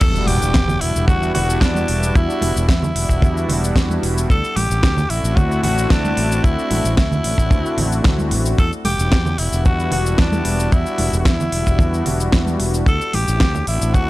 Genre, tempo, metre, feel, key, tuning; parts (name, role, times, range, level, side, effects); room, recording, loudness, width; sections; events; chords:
nu-disco, nu disco; 112 BPM; 4/4; straight; E minor; A4 = 442 Hz
breathy tenor saxophone; melody; 0.0-14.1 s; D4 to A4; -23 LUFS; equal
warm analog pad; accompaniment; 0.0-14.1 s; G3 to F#5; -24 LUFS; equal; chorus
fingered electric bass; bass; 0.0-14.1 s; E1 to E2; -20 LUFS; equal
kick drum; drums; 0.0-14.1 s; -15 LUFS; equal
pop drum kit; drums; 0.0-14.1 s; crash cymbal, hi-hat, shaker, snare drum; -24 LUFS; equal
impact; sound effects; 0.0-2.2 s; -24 LUFS; equal
congas; percussion; 0.3-14.1 s; -26 LUFS; right 2 dB
small room ambience; dry, gritty hardware recording, cassette tape; -15 LUFS; side -18 dB against mid
0.0-14.1 A section
drop 0.0-14.1; impact 0.0-2.2
0.0 Em9; 4.3 D9; 8.6 Em9; 12.9 D9